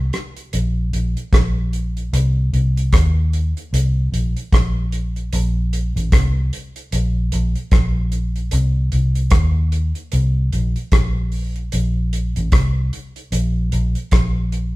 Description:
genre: lovers rock reggae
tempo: 75 BPM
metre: 4/4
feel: swing 59% on 16ths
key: unclear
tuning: A4 = 441 Hz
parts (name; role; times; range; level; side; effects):
- vintage muted fingered electric bass; bass; 0.0-14.8 s; A1 to Eb2; -18 LUFS; equal; none
- damped 70s drum kit; drums; 0.1-14.7 s; hi-hat, kick drum, rim click; -18 LUFS; equal; none
room: moderate stone room reverb, RT60 1.0 s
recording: band playing live in one room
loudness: -16 LUFS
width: side -19 dB against mid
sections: 0.0-14.8 A section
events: none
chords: none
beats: 0.53 1.32 | 2.12 2.92 3.72 4.52 | 5.32 6.12 6.92 7.72 | 8.52 9.32 10.12 10.92 | 11.72 12.52 13.32 14.12

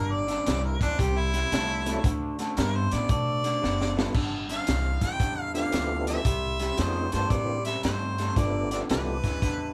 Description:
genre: electric blues shuffle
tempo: 114 BPM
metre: 4/4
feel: swing 65% on 8ths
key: G mixolydian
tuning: A4 = 441 Hz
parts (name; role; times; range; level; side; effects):
- warm harmonica; melody; 0.0-9.7 s; D4 to G5; -33 LUFS; equal; none
- electric guitar through a small old amp; riff; 0.0-9.7 s; G2 to B3; -35 LUFS; equal; none
- upright bass; bass; 0.0-9.7 s; F#1 to B2; -33 LUFS; equal; none
- crunchy breakbeat drum kit; drums; 0.3-9.6 s; crash cymbal, hi-hat, kick drum, snare drum; -32 LUFS; equal; none
- tonewheel organ; accompaniment; 1.9-9.2 s; E3 to Ab4; -34 LUFS; equal; slow rotary speaker, overdrive, chorus vibrato
room: light reverb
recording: band playing live in one room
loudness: -27 LUFS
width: mono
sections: 0.0-4.1 A section; 4.1-9.7 B section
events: harmonica solo 0.0-4.1; drum fill 3.6-4.1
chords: 0.0 G5; 1.0 Cadd9; 2.0 D; 4.1 G9; 6.3 C9; 8.4 G9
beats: 0.46 0.99 1.51 | 2.04 2.57 3.09 3.62 | 4.15 4.67 5.20 5.73 | 6.25 6.78 7.31 7.84 | 8.37 8.90 9.43

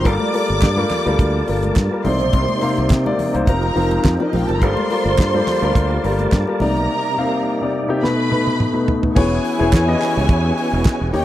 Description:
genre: disco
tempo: 106 BPM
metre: 4/4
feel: straight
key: G minor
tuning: A4 = 441 Hz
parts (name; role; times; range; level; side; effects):
- dark studio string section; second line; 0.0-11.2 s; D4 to D6; -23 LUFS; right 1 dB; none
- warm grand piano; accompaniment; 0.0-11.2 s; B2 to F5; -20 LUFS; left 3 dB; none
- tonewheel organ; sustained chords; 0.0-11.2 s; C3 to A5; -26 LUFS; right 2 dB; chorus vibrato, fast rotary speaker
- fingered electric bass; bass; 0.0-11.2 s; E1 to C3; -20 LUFS; right 1 dB; none
- damped 70s drum kit; drums; 0.1-11.2 s; crash cymbal, hi-hat, kick drum, snare drum, toms; -17 LUFS; right 1 dB; none
- congas; percussion; 0.1-6.7 s; none; -29 LUFS; left 3 dB; none
- group handclap; percussion; 0.6-11.0 s; none; -31 LUFS; right 8 dB; none
room: small room ambience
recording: dry, close 1970s-style studio recording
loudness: -15 LUFS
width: side -13 dB against mid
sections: 0.0-9.2 A section; 9.2-11.2 B section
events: drum fill 8.0-9.2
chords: 0.1 Gm9; 2.1 Cm9; 3.5 F7sus4; 4.6 Gm9; 6.6 Cm9; 8.0 B7; 9.2 E6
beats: | 0.05 0.62 1.20 1.77 | 2.34 2.91 3.48 4.05 | 4.62 5.19 5.75 6.32 | 6.89 7.46 8.03 8.59 | 9.16 9.72 10.29 10.85

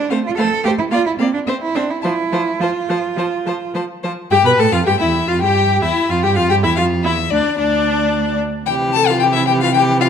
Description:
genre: quick classical-period movement for string quartet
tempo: 110 BPM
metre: 4/4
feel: straight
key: F major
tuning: A4 = 441 Hz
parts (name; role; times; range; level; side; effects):
- rich cello; bass; 0.0-10.1 s; D2 to A4; -19 LUFS; right 5 dB; none
- rich violin; melody; 0.1-10.1 s; D5 to B5; -19 LUFS; left 11 dB; none
- clear violin; second line; 0.1-10.1 s; D4 to D5; -21 LUFS; left 3 dB; none
- clear viola; accompaniment; 0.1-10.1 s; E3 to B4; -20 LUFS; right 1 dB; none
room: moderate recital hall reverb, RT60 1.8 s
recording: none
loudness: -14 LUFS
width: side -7 dB against mid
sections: 0.0-4.3 A section; 4.3-10.1 B section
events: none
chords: 0.0 F/A; 0.9 Bb; 1.5 C; 2.0 F; 4.3 G13; 6.5 N.C.; 8.7 C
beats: 0.38 0.92 1.48 | 2.04 2.61 3.18 3.75 | 4.31 4.87 5.42 5.96 | 6.50 7.05 7.59 8.13 | 8.67 9.21 9.75

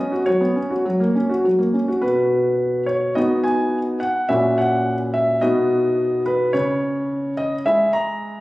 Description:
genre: classical-period piano sonatina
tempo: 106 BPM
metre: 4/4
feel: rubato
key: B major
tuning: A4 = 441 Hz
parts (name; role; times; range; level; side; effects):
- clear grand piano; solo; 0.0-8.4 s; A#2 to A#5; -17 LUFS; equal; none
room: wet recital hall reverb, RT60 1.6 s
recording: recorded on a phone in the room, club reverb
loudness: -17 LUFS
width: side -18 dB against mid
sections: 0.0-2.0 A section; 2.0-8.4 B section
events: none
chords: 0.0 F#sus4; 0.9 F#; 2.0 B; 4.3 F#7/A#; 5.4 B; 6.5 C#m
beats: 0.26 0.85 1.44 | 2.02 2.59 3.15 3.72 | 4.29 4.86 5.42 5.98 | 6.54 7.10 7.66 8.22

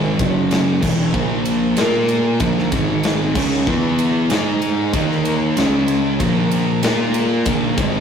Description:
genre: stoner and doom metal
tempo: 95 BPM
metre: 4/4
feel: straight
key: unclear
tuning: A4 = 440 Hz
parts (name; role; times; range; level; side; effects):
- mellow tonewheel organ; sustained chords; 0.0-8.0 s; C#4 to C#6; -32 LUFS; left 1 dB; none
- sludgy distorted guitar; riff; 0.0-8.0 s; E2 to A#4; -22 LUFS; left 1 dB; overdrive
- thick fuzz guitar; riff; 0.0-8.0 s; E2 to A#4; -23 LUFS; left 6 dB; distortion
- thick fuzz guitar; riff; 0.0-8.0 s; E2 to A#4; -20 LUFS; right 4 dB; distortion
- fuzz picked electric bass; bass; 0.0-8.0 s; E1 to A#2; -27 LUFS; left 2 dB; overdrive
- big rock drum kit; drums; 0.2-7.9 s; crash cymbal, kick drum, ride cymbal, snare drum; -21 LUFS; right 1 dB; none
room: wet studio reverb, RT60 0.5 s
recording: rough rehearsal-room recording, tube saturation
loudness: -15 LUFS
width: side -7 dB against mid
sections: 0.0-8.0 A section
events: none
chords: 0.2 F#5; 0.8 C#m; 1.2 A#5; 2.7 G#5; 3.4 A#5; 3.7 E5; 4.3 G#5; 4.9 D#5; 5.6 C#5; 6.2 A#5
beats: 0.52 | 1.15 1.78 2.42 3.05 | 3.68 4.31 4.95 5.58 | 6.21 6.84 7.47

